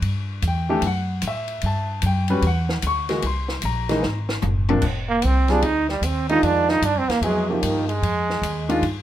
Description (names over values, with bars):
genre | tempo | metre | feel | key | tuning
modal jazz | 150 BPM | 4/4 | swing 66% on 8ths | F dorian from 4.8 s | A4 = 440 Hz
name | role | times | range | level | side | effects
upright bass | bass | 0.0-9.0 s | F1 to A2 | -23 LUFS | equal | none
compact cocktail drum kit | drums | 0.0-8.9 s | crash cymbal, hi-hat, kick drum, ride cymbal, snare drum, toms | -30 LUFS | left 2 dB | none
warm grand piano | accompaniment | 0.5-8.8 s | C3 to C#6 | -23 LUFS | left 1 dB | none
brilliant trombone | second line | 5.1-8.8 s | C3 to Eb4 | -21 LUFS | right 4 dB | none
room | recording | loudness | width
moderate club reverb, RT60 0.5 s | minimal, uncompressed stereo recording | -19 LUFS | side -12 dB against mid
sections
0.0-4.8 A section; 4.8-9.0 A section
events
drum fill 4.0-4.8; trombone solo 4.8-9.0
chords
0.0 Em9; 3.2 C7(#5, no3); 4.8 Fm9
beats
| 0.03 0.43 0.83 1.23 | 1.63 2.03 2.43 2.83 | 3.23 3.62 4.03 4.42 | 4.83 5.22 5.62 6.03 | 6.43 6.83 7.23 7.63 | 8.03 8.43 8.83